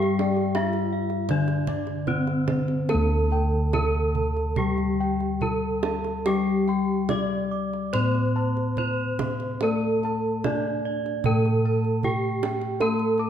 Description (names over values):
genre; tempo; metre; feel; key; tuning
Javanese gamelan; 73 BPM; 4/4; uneven beats; unclear; A4 = 441 Hz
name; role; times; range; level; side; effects
gamelan-type bronze metallophone; melody; 0.0-13.3 s; C4-40c to D5; -28 LUFS; right 1 dB; slapback echo
gamelan-type bronze metallophone; accompaniment; 0.0-13.3 s; D3 to C4-40c; -28 LUFS; left 6 dB; none
gamelan-type bossed gongs; arpeggios; 0.0-13.3 s; C5-40c to D6; -35 LUFS; left 2 dB; none
gamelan-type bronze metallophone; arpeggios; 0.0-13.3 s; C5-40c to D6; -34 LUFS; right 5 dB; none
gamelan-type bossed gongs; bass; 0.0-13.3 s; D2 to A4+20c; -27 LUFS; right 1 dB; none
kendang; percussion; 0.0-13.3 s; none; -32 LUFS; right 5 dB; none
room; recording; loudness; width
wet scoring stage reverb, RT60 1.6 s; dark, warm production; -22 LUFS; side -9 dB against mid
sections
0.0-2.9 A section; 2.9-13.3 B section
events
none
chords
none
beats
0.56 1.30 2.08 | 2.90 3.74 4.58 5.42 | 6.26 7.10 7.94 8.79 | 9.63 10.46 11.26 12.05 | 12.82